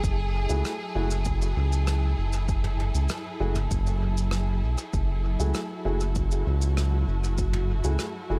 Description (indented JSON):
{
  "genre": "ambient dub",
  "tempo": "98 BPM",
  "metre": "4/4",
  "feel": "straight",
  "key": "F# minor",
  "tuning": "A4 = 435 Hz",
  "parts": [
    { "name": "warm symphonic string section", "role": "sustained chords", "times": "0.0-8.4 s", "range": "F#3 to A4", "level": "-36 LUFS", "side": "equal", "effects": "none" },
    { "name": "round analog bass", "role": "bass", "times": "0.0-8.4 s", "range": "F#1 to C#2", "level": "-27 LUFS", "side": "equal", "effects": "tube saturation" },
    { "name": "electronic kick drum", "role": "drums", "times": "0.0-7.5 s", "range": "none", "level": "-32 LUFS", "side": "equal", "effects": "overdrive" },
    { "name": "soft brush drum kit", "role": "drums", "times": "0.0-8.1 s", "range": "rim click, shaker, toms", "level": "-39 LUFS", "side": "equal", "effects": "dub echo" },
    { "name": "dark upright piano", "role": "stabs", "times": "0.5-8.4 s", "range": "A3 to G#4", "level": "-37 LUFS", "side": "equal", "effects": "dub echo" }
  ],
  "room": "small room ambience",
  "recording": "none",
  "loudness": "-27 LUFS",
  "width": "mono",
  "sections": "0.0-8.4 A section",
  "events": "none",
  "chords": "0.0 F#m9"
}